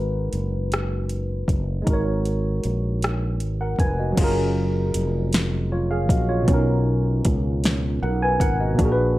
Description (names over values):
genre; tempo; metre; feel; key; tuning
slow six-eight R&B; 52 BPM (dotted quarters); 6/8; straight; F# major; A4 = 441 Hz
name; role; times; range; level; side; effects
tine electric piano; accompaniment; 0.0-9.2 s; A#2 to G#5; -24 LUFS; equal; overdrive, lush chorus
fretless electric bass; bass; 0.0-9.2 s; E#1 to C#2; -24 LUFS; equal; none
smooth R&B drum kit; drums; 0.3-9.0 s; crash cymbal, hi-hat, kick drum, rim click, snare drum; -23 LUFS; equal; none
room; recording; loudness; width
light reverb; dry, gritty hardware recording; -20 LUFS; side -17 dB against mid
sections
0.0-4.2 A section; 4.2-9.2 B section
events
none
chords
0.0 G#m9; 6.5 Bmaj9